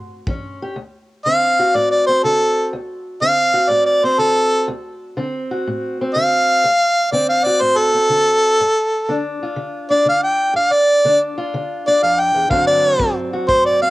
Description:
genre	acoustic country blues, solo or duo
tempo	122 BPM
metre	4/4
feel	swing 67% on 8ths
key	D mixolydian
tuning	A4 = 439 Hz
part	fingerpicked steel-string acoustic guitar	accompaniment	0.0-13.9 s	D2 to G4	-23 LUFS	equal	none
part	kick drum	drums	0.3-0.4, 12.5-13.6 s	none	-27 LUFS	equal	none
part	clear harmonica	melody	1.3-13.9 s	A4 to G5	-14 LUFS	equal	cassette tape
room	light reverb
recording	home recording on cassette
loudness	-14 LUFS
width	side -18 dB against mid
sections	0.8-13.9 A section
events	harmonica solo 0.8-13.9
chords	0.0 A7; 0.8 D7; 8.6 G5; 12.5 D7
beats	0.27 | 0.76 1.25 1.74 2.23 | 2.72 3.21 3.70 4.19 | 4.68 5.17 5.66 6.14 | 6.63 7.12 7.61 8.10 | 8.59 9.08 9.57 10.06 | 10.55 11.04 11.53 12.02 | 12.51 13.00 13.49

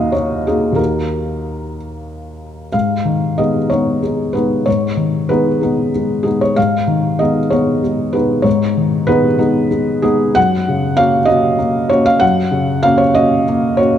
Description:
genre	neoclassical minimalist piano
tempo	63 BPM (dotted quarters)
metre	6/8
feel	rubato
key	G# dorian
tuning	A4 = 440 Hz
part	felt-muted upright piano	solo	0.0-14.0 s	D#2 to F#5	-13 LUFS	equal	none
room	moderate concert hall reverb, RT60 1.9 s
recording	dark, warm production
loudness	-13 LUFS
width	side -10 dB against mid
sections	0.0-2.7 A section; 2.7-14.0 A section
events	none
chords	0.0 D#m; 2.7 G#m; 10.4 F#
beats	| 0.78 1.76 | 2.74 3.71 | 4.67 5.62 | 6.57 7.51 | 8.45 9.39 | 10.36 11.29 | 12.22 13.15

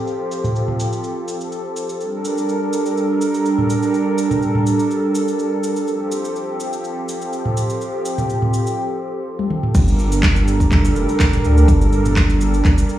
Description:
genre	afro house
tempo	124 BPM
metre	4/4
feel	swing 53% on 16ths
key	G minor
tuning	A4 = 440 Hz
part	warm analog pad	sustained chords	0.0-13.0 s	F3 to Bb4	-20 LUFS	right 1 dB	wide subtle chorus, sidechain pumping
part	afro-pop drum kit	drums	0.1-13.0 s	cabasa, crash cymbal, handclaps, toms	-24 LUFS	equal	low-pass filter on perc, low-pass filter on toms, low-pass filter on cymbals, low-pass filter on snare
part	dark detuned saw bass	bass	9.7-12.6 s	F1 to D2	-16 LUFS	equal	sidechain pumping
part	electronic kick drum	drums	9.7-12.8 s	none	-15 LUFS	equal	none
room	moderate plate reverb, RT60 1.0 s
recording	played on a big sound system in a bare room, stone room reverb, small room ambience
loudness	-16 LUFS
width	side -13 dB against mid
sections	0.0-9.7 A section; 9.7-13.0 B section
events	filter sweep on drum 0.0-9.7; drum fill 9.4-9.7; drop 9.7-13.0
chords	0.0 F; 2.0 Gm; 5.9 F; 9.7 Gm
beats	| 0.07 0.55 1.04 1.52 | 2.01 2.49 2.97 3.46 | 3.94 4.42 4.91 5.39 | 5.88 6.36 6.84 7.33 | 7.81 8.30 8.78 9.26 | 9.75 10.23 10.71 11.20 | 11.68 12.17 12.65

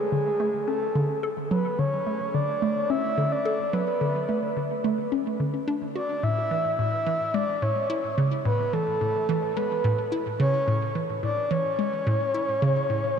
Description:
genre	ambient, sequencer-driven space music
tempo	108 BPM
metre	4/4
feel	straight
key	D lydian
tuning	A4 = 436 Hz
part	breathy flute-like synth lead	melody	0.0-13.2 s	G#4 to E5	-26 LUFS	equal	chorus, shimmer reverb, tape echo
part	hollow square pluck	riff	0.0-13.1 s	A2 to A4	-26 LUFS	equal	chorus, tape echo
room	wet huge ambient reverb, RT60 7.9 s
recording	dreamy mix soaked in reverb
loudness	-23 LUFS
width	side -7 dB against mid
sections	0.0-13.2 A section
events	none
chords	0.0 D5; 6.2 A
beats	0.12 0.68 1.23 | 1.79 2.34 2.90 3.45 | 4.01 4.57 5.12 5.68 | 6.23 6.79 7.34 7.90 | 8.45 9.01 9.57 10.12 | 10.68 11.23 11.79 12.34 | 12.90

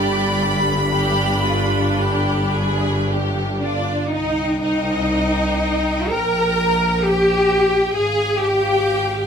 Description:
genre	classical, slow romantic movement for string orchestra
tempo	55-67 BPM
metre	4/4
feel	rubato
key	C minor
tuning	A4 = 440 Hz
part	clear studio violin section	melody	0.0-9.3 s	F5 to B5	-26 LUFS	left 2 dB	none
part	clear studio violin section	second line	0.0-9.3 s	F4 to Bb5	-25 LUFS	left 1 dB	none
part	rich studio viola section	accompaniment	0.0-9.3 s	G3 to Bb4	-24 LUFS	right 1 dB	none
part	bright studio double bass section	bass	0.0-9.3 s	G1 to C2	-24 LUFS	equal	none
part	clear studio cello section	bass	0.0-9.3 s	G2 to Bb4	-20 LUFS	equal	none
room	light reverb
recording	minimal, uncompressed stereo recording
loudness	-16 LUFS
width	side -7 dB against mid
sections	0.0-4.1 A section; 4.1-9.3 B section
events	none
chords	0.0 G; 4.1 Cm; 6.1 Gm/Bb; 8.0 Fm/Ab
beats	0.93 2.01 3.08 | 4.12 5.09 6.10 7.05 | 7.96 8.87

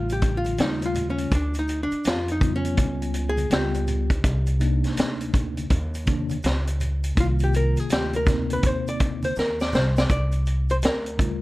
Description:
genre	hip hop, jazz-hop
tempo	82 BPM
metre	4/4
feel	swing 63% on 16ths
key	C minor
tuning	A4 = 440 Hz
part	archtop guitar, miked and amplified	melody	0.0-11.4 s	C#4 to D5	-27 LUFS	left 1 dB	plate reverb
part	mellow tine electric piano	accompaniment	0.0-11.4 s	C3 to F4	-28 LUFS	left 1 dB	medium stereo tremolo
part	upright bass	bass	0.0-11.4 s	A1 to F2	-26 LUFS	equal	none
part	vintage drum kit	drums	0.1-11.4 s	hi-hat, kick drum, snare drum	-24 LUFS	equal	none
part	maracas and congas	percussion	0.1-11.4 s	none	-37 LUFS	right 3 dB	none
room	light reverb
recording	dark, warm production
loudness	-21 LUFS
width	side -19 dB against mid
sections	0.0-10.1 A section; 10.1-11.4 B section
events	hollow-body jazz guitar solo 0.0-10.1; drum fill 9.4-10.1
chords	0.0 Aaug7; 1.3 Dmmaj7; 2.8 Db7#11; 4.2 Cm9; 10.1 Csus2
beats	0.58 | 1.31 2.05 2.78 3.51 | 4.24 4.97 5.71 6.44 | 7.17 7.90 8.63 9.36 | 10.10 10.83

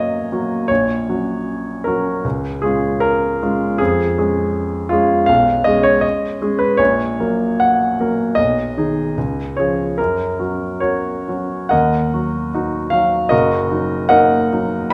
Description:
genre	classical, romantic character piece for solo piano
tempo	64-82 BPM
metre	2/4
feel	rubato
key	F# major, Eb minor from 11.7 s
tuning	A4 = 437 Hz
part	warm baby grand piano	solo	0.0-14.9 s	Gb1 to F#5	-18 LUFS	equal	none
room	wet recital hall reverb, RT60 1.5 s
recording	none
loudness	-18 LUFS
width	mono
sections	0.0-11.7 A section; 11.7-14.9 B section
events	none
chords	0.0 F#; 0.7 F#/A#; 2.2 C#; 3.8 C#/E#; 5.3 C#5/B; 6.8 F#/A#; 8.4 G#m/B; 9.2 C#; 10.0 F#; 11.7 Ebm; 13.3 Ebm/Gb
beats	| 0.70 1.48 | 2.24 3.02 | 3.79 4.55 | 5.29 6.04 | 6.80 7.61 | 8.37 9.16 | 9.98 10.82 | 11.72 12.54 | 13.32 14.10 | 14.92

